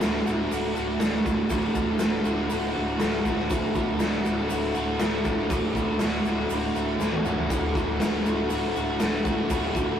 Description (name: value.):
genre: garage rock duo or trio.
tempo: 120 BPM.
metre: 4/4.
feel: straight.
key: D major.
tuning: A4 = 438 Hz.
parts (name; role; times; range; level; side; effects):
overdriven electric guitar; riff; 0.0-10.0 s; D2 to F#4; -26 LUFS; equal; none.
growling fingered electric bass; bass; 0.0-10.0 s; D1; -37 LUFS; equal; overdrive.
raw garage drum kit; drums; 0.0-9.9 s; hi-hat, kick drum, snare drum, toms; -27 LUFS; equal; none.
tube shaker; percussion; 0.0-9.9 s; none; -46 LUFS; left 4 dB; none.
room: moderate studio reverb, RT60 0.6 s.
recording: rough rehearsal-room recording, warm saturation.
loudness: -23 LUFS.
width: side -9 dB against mid.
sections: 0.0-10.0 A section.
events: drum fill 7.0-7.5.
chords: 0.0 D.